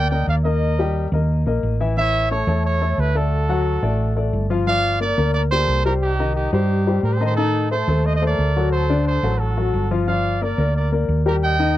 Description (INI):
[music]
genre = latin, salsa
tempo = 178 BPM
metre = 4/4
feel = straight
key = G minor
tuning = A4 = 436 Hz
[part]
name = mellow trumpet section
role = melody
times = 0.0-11.8 s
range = Eb4 to G5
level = -23 LUFS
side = right 2 dB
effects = none
[part]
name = warm baby grand piano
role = accompaniment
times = 0.0-11.8 s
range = D3 to G5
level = -23 LUFS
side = left 5 dB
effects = none
[part]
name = hollow-body short-scale fingered electric bass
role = bass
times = 0.0-11.8 s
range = G1 to A2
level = -20 LUFS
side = right 1 dB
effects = none
[sound]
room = little or no reverb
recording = dry, close 1970s-style studio recording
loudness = -17 LUFS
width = side -14 dB against mid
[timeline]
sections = 0.0-4.7 A section; 4.7-11.8 A section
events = none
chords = 0.0 Gm; 0.6 Eb; 2.0 A; 3.3 D; 4.7 Gm7; 6.0 Cm; 7.4 Adim; 8.7 D7; 10.1 Gm7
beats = 0.28 | 0.62 0.96 1.29 1.63 | 1.97 2.31 2.65 2.98 | 3.32 3.66 4.00 4.33 | 4.67 5.01 5.35 5.69 | 6.02 6.36 6.70 7.04 | 7.38 7.71 8.05 8.39 | 8.73 9.06 9.40 9.74 | 10.08 10.42 10.75 11.09 | 11.43 11.77